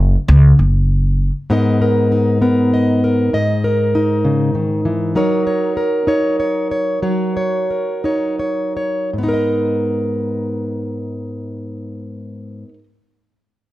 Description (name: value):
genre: indie folk with a building arrangement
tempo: 52-66 BPM (dotted quarters)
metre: 6/8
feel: straight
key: G# minor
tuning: A4 = 445 Hz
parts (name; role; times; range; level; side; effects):
- upright bass; bass; 0.0-1.3 s; F#1 to C#2; -10 LUFS; equal; none
- fingerpicked plugged-in steel-string acoustic guitar; accompaniment; 1.5-12.8 s; G#2 to D#5; -16 LUFS; equal; none
room: light reverb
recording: none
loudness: -14 LUFS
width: side -16 dB against mid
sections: 0.0-1.5 A section; 1.5-9.1 B section; 9.1-13.7 C section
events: slowing down 5.1-9.1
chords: 0.0 F#5; 1.5 G#madd9; 5.1 D#m7/F#; 9.1 G#madd9